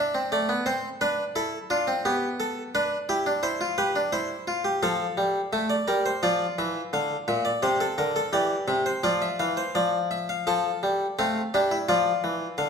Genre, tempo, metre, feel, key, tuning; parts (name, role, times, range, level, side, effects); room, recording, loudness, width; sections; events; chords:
classical, baroque-style 3-part fugue for harpsichord; 86 BPM; 4/4; straight; F major; A4 = 440 Hz
harpsichord; solo; 0.0-12.7 s; Bb2 to A5; -23 LUFS; equal
wet recital hall reverb, RT60 1.4 s; minimal, uncompressed stereo recording; -23 LUFS; side -6 dB against mid
0.0-10.5 A section; 10.5-12.7 B section
0.0 C; 0.7 Dm7/C; 2.1 G/B; 3.4 C; 4.8 F; 6.2 Bb; 7.6 C7; 9.0 F5; 10.5 F; 11.9 Dm